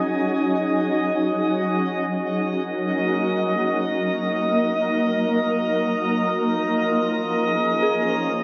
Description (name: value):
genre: ambient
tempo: 50 BPM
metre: 4/4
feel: straight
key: unclear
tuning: A4 = 441 Hz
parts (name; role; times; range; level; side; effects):
- mellow alto flute; melody; 0.0-8.4 s; Eb4 to Eb5; -33 LUFS; equal; diffuse ambient delay
- shimmering ambient pad; sustained chords; 0.0-8.4 s; F3 to Bb4; -24 LUFS; equal; chorus, built-in reverb
- soft synth bell; arpeggios; 0.0-8.4 s; Ab4; -29 LUFS; equal; chorus, phaser
- drifting glass-harmonics texture; texture; 0.0-8.4 s; Eb5 to Eb6; -28 LUFS; equal; chorus, built-in reverb
room: wet lush hall reverb, RT60 3.2 s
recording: worn, warbling old tape, cassette tape, warbly pitch drift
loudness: -22 LUFS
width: mono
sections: 0.0-8.4 A section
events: fade-in on alto flute 0.0-8.4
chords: 0.0 Ab7sus4; 1.4 Ebm; 6.2 Bbm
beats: 0.25 | 1.45 2.65 3.85 5.05 | 6.25 7.45